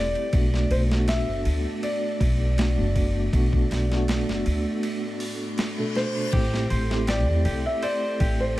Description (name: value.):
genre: trip hop.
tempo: 80 BPM.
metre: 4/4.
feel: straight.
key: unclear.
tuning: A4 = 439 Hz.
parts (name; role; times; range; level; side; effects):
felt-muted upright piano; melody; 0.0-8.6 s; C5 to E5; -30 LUFS; left 1 dB; tape echo.
mellow tine electric piano; accompaniment; 0.0-8.6 s; B2 to A4; -29 LUFS; equal; slow stereo tremolo.
string machine, cellos; sustained chords; 0.0-8.6 s; A3 to C6; -36 LUFS; right 1 dB; ensemble chorus.
upright bass; bass; 0.0-8.6 s; E1 to E2; -24 LUFS; equal; none.
boom bap sampler-style drum kit; drums; 0.2-8.6 s; crash cymbal, hi-hat, kick drum, ride cymbal, snare drum; -28 LUFS; equal; overdrive.
reverse cymbal; sound effects; 5.1-6.3 s; none; -38 LUFS; left 3 dB; none.
clean electric guitar; arpeggios; 6.3-8.6 s; G4 to C5; -34 LUFS; right 1 dB; tape echo.
room: light reverb, digital ambience.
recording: vinyl crackle.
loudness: -22 LUFS.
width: side -16 dB against mid.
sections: 0.0-6.3 A section; 6.3-8.6 B section.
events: break 4.8-6.3; reverse cymbal 5.1-6.3.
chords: 0.3 Bm7; 6.3 Am7.